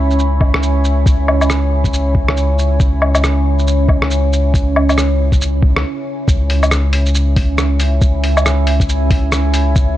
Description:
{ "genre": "future garage", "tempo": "138 BPM", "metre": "4/4", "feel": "swing 60% on 16ths", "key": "C# minor", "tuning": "A4 = 441 Hz", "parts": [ { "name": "deep dark ambient pad", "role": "sustained chords", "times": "0.0-10.0 s", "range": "C#4 to B5", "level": "-19 LUFS", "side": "right 2 dB", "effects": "chorus, built-in reverb, sidechain pumping" }, { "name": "soft dub sub bass", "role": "bass", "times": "0.0-10.0 s", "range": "C#2", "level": "-14 LUFS", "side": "equal", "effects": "sidechain pumping" }, { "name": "lo-fi sampler-style drum kit", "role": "drums", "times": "0.1-9.9 s", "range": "hi-hat, rim click, shaker, woodblock", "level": "-19 LUFS", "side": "left 1 dB", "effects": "studio reverb" }, { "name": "electronic kick drum", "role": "drums", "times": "0.4-9.9 s", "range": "none", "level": "-13 LUFS", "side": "equal", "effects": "studio reverb" } ], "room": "light reverb, digital ambience", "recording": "cassette tape", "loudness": "-12 LUFS", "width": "side -14 dB against mid", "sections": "0.0-6.3 A section; 6.3-10.0 B section", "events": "break 5.8-6.3", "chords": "0.0 C#m7" }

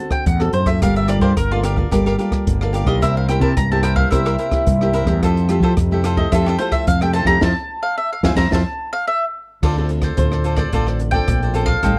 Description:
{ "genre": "samba and choro", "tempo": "109 BPM", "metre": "4/4", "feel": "straight", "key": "F major", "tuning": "A4 = 444 Hz", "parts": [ { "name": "mandolin", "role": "melody", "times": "0.0-12.0 s", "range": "F4 to Bb5", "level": "-24 LUFS", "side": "equal", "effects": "none" }, { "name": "nylon-string guitar", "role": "accompaniment", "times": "0.0-12.0 s", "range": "G2 to A4", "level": "-25 LUFS", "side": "equal", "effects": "none" }, { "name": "open jazz drum kit", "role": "drums", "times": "0.1-12.0 s", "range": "crash cymbal, hi-hat, kick drum, rim click, snare drum", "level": "-24 LUFS", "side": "equal", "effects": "none" }, { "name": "fretless electric bass", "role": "bass", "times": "0.3-12.0 s", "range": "G1 to F3", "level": "-21 LUFS", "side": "equal", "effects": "none" }, { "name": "cavaquinho", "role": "accompaniment", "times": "0.8-12.0 s", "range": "E4 to G5", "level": "-27 LUFS", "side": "equal", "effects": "none" } ], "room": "small room ambience", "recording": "dry, close 1970s-style studio recording", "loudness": "-18 LUFS", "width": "mono", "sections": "0.0-9.6 A section; 9.6-12.0 B section", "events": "mandolin solo 0.0-9.6; band accent 7.4-9.6; drum fill 8.5-9.6", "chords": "0.0 D7; 0.8 Gm9; 3.0 C7; 5.2 Fmaj9; 9.6 Dm7" }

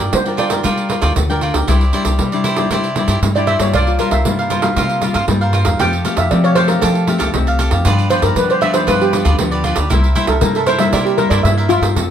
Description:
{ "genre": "samba and choro", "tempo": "117 BPM", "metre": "4/4", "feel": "straight", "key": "unclear", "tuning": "A4 = 440 Hz", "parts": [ { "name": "steel pan", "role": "melody", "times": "0.0-12.1 s", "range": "F4 to G5", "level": "-17 LUFS", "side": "right 1 dB", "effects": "none" }, { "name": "cavaquinho", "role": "accompaniment", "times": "0.0-12.0 s", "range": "E4 to A5", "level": "-21 LUFS", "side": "right 2 dB", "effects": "none" }, { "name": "nylon-string guitar", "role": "accompaniment", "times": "0.0-12.1 s", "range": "G2 to Bb4", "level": "-20 LUFS", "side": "left 4 dB", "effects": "none" }, { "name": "upright bass", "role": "bass", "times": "0.0-12.1 s", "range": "C2 to G3", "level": "-17 LUFS", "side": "left 1 dB", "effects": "none" }, { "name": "pandeiro", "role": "percussion", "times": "0.1-12.1 s", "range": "none", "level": "-21 LUFS", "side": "right 5 dB", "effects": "none" } ], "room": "light reverb", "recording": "none", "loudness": "-13 LUFS", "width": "side -9 dB against mid", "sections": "0.0-12.0 A section", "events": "steel pan solo 0.0-12.0", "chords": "0.0 Gm7; 1.7 Cadd9; 3.7 C7sus4; 5.8 Fadd9; 7.9 G7; 9.9 C7" }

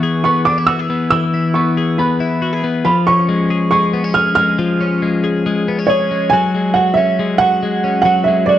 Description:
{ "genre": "indie pop", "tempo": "138 BPM", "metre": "4/4", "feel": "straight", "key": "unclear", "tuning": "A4 = 438 Hz", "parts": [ { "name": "dark upright piano", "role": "melody", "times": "0.0-8.6 s", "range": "C#5 to E#6", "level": "-15 LUFS", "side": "right 4 dB", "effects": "slapback echo" }, { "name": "twelve-string electric guitar", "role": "arpeggios", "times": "0.0-8.6 s", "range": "E3 to G#4", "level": "-16 LUFS", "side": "left 3 dB", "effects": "none" } ], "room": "little or no reverb", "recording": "dry, close 1970s-style studio recording", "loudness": "-13 LUFS", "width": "side -11 dB against mid", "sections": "0.0-6.3 A section; 6.3-8.6 B section", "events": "none", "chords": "0.0 E; 2.9 C#; 6.3 F#sus2" }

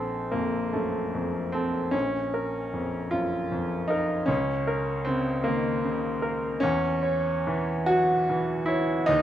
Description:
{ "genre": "classical, romantic character piece for solo piano", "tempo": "50 BPM (dotted quarters)", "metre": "6/8", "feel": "rubato", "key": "Bb minor", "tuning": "A4 = 435 Hz", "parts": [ { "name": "bright grand piano", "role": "solo", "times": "0.0-9.2 s", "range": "Bb1 to C#5", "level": "-24 LUFS", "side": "equal", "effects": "none" } ], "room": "moderate recital hall reverb, RT60 1.4 s", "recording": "close, detailed microphones", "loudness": "-24 LUFS", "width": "side -11 dB against mid", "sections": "0.0-9.2 A section", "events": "none", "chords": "0.0 F/Bb; 1.9 Bbm; 4.3 Bbm/Db; 6.6 C#m/E" }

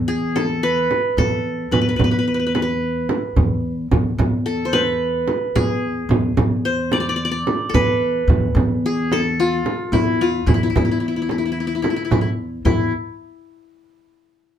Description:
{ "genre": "Arabic maqam ensemble", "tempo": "110 BPM", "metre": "4/4", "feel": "straight", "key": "E maqam hijaz", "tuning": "A4 = 440 Hz", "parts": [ { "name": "upright bass", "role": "bass", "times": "0.0-12.9 s", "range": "E2", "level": "-22 LUFS", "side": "equal", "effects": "none" }, { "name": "qanun", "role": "melody", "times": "0.1-12.9 s", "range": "E4 to D5", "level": "-21 LUFS", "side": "left 2 dB", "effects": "none" }, { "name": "frame drum", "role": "percussion", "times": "0.4-12.9 s", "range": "none", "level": "-21 LUFS", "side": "right 2 dB", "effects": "none" } ], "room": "wet small room reverb, RT60 0.6 s", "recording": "band playing live in one room", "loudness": "-17 LUFS", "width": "side -9 dB against mid", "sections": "0.0-12.7 A section; 12.7-14.6 B section", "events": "none", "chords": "none" }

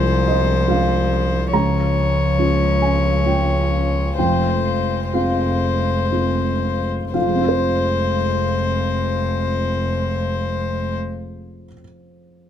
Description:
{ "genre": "neoclassical piano and strings", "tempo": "58-74 BPM", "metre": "3/4", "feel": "rubato", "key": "F minor", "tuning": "A4 = 440 Hz", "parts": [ { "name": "warm violin", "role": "melody", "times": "0.0-10.9 s", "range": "C5 to Db5", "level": "-23 LUFS", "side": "left 6 dB", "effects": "none" }, { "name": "rich cello", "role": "second line", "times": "0.0-11.0 s", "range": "F3 to Ab3", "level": "-27 LUFS", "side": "right 7 dB", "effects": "none" }, { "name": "felt-muted upright piano", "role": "accompaniment", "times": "0.0-12.5 s", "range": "C2 to Bb5", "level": "-22 LUFS", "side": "right 1 dB", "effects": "none" }, { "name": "dark chamber string section", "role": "sustained chords", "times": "0.0-11.0 s", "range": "Ab3 to F4", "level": "-32 LUFS", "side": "left 4 dB", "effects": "none" }, { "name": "rich double bass", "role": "bass", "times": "0.0-10.9 s", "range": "F1 to Db2", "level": "-22 LUFS", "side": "equal", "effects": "none" } ], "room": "light reverb", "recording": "close, detailed microphones", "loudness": "-17 LUFS", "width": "side -9 dB against mid", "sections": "0.0-7.1 A section; 7.1-10.2 B section", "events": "slowing down 0.3-7.1", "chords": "0.0 Fm/C; 1.5 Db; 4.2 Fm" }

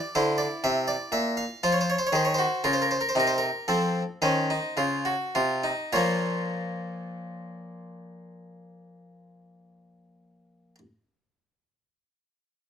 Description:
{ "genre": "classical, baroque-style 3-part fugue for harpsichord", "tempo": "52-63 BPM", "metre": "4/4", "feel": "straight", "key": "Bb minor", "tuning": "A4 = 440 Hz", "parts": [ { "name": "harpsichord", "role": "solo", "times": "0.0-10.8 s", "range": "Bb2 to F5", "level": "-24 LUFS", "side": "equal", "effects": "none" } ], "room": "moderate studio reverb, RT60 0.8 s", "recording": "none", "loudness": "-24 LUFS", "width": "side -8 dB against mid", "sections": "0.0-5.9 A section; 5.9-10.6 B section", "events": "slowing down 0.0-5.9", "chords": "0.0 C7; 1.6 F7sus4; 3.7 F7; 5.9 Bbm" }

